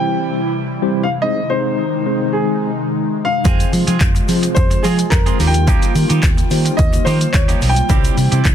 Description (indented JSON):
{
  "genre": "dance-pop",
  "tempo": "108 BPM",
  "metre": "4/4",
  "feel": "straight",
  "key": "F minor",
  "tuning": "A4 = 442 Hz",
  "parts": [
    { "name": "dark baby grand piano", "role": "melody", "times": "0.0-8.5 s", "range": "Ab4 to G5", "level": "-22 LUFS", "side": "left 1 dB", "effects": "tape echo" },
    { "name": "mellow tine electric piano", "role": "accompaniment", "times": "0.0-8.4 s", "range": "G3 to C5", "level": "-22 LUFS", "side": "left 2 dB", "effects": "medium stereo tremolo, sidechain pumping" },
    { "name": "airy breathy pad", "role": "sustained chords", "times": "0.0-8.5 s", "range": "C3 to F4", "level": "-22 LUFS", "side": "left 1 dB", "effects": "chorus, sidechain pumping" },
    { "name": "clean electric guitar", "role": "riff", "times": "3.4-8.5 s", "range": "F3 to Ab4", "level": "-25 LUFS", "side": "right 8 dB", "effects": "lush chorus" },
    { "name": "vintage muted fingered electric bass", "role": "bass", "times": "3.5-8.5 s", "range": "B1 to F3", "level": "-16 LUFS", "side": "equal", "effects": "sidechain pumping" },
    { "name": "punchy analog drum machine", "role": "drums", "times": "3.5-8.5 s", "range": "handclaps, hi-hat, kick drum, shaker", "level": "-16 LUFS", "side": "equal", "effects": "none" },
    { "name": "tube shaker", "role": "percussion", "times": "3.5-8.5 s", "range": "none", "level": "-35 LUFS", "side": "left 16 dB", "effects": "none" }
  ],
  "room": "little or no reverb",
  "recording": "dense, heavily limited modern master",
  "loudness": "-13 LUFS",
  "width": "side -9 dB against mid",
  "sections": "0.0-8.5 A section",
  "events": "none",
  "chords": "0.0 C; 1.2 Ab; 3.5 Fm; 5.4 Ebadd9; 7.9 C"
}